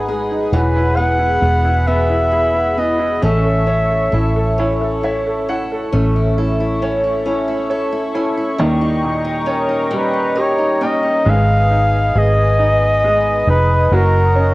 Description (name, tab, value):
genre	six-eight pop ballad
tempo	45 BPM (dotted quarters)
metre	6/8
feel	straight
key	unclear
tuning	A4 = 440 Hz
part	warm flugelhorn	melody	0.0-5.0, 9.5-14.5 s	G#4 to F#5	-17 LUFS	equal	analog delay
part	bright baby grand piano	accompaniment	0.0-14.5 s	A#2 to G5	-22 LUFS	right 2 dB	cassette tape
part	chorused pulse-width pad	sustained chords	0.0-14.5 s	E4 to D#6	-22 LUFS	equal	cassette tape
part	picked steel-string acoustic guitar	arpeggios	0.0-11.8 s	F#3 to A#4	-24 LUFS	left 2 dB	cassette tape, analog delay
part	vintage muted fingered electric bass	bass	0.0-14.5 s	E1 to D#2	-17 LUFS	equal	none
room	light reverb, small room ambience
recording	home recording on cassette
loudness	-13 LUFS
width	side -19 dB against mid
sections	0.0-5.9 A section; 5.9-11.3 B section; 11.3-14.5 C section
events	grand piano fill 4.6-5.9, 9.9-11.3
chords	0.0 G#m7; 0.5 Eadd9; 3.2 A; 8.6 D#7; 11.3 G#m; 13.9 D#m7/F#